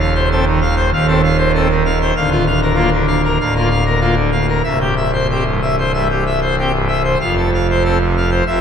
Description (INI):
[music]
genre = classical, organ toccata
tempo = 96 BPM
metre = 4/4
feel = straight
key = F major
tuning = A4 = 441 Hz
[part]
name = pipe organ, full organ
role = solo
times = 0.0-8.6 s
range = C1 to F5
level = -13 LUFS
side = equal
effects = none
[sound]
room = wet cathedral reverb, RT60 5.7 s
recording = minimal, uncompressed stereo recording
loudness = -13 LUFS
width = side -8 dB against mid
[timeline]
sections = 0.0-8.6 A section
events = none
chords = 0.0 F7/Eb; 2.1 Bb/D; 4.6 C; 7.2 F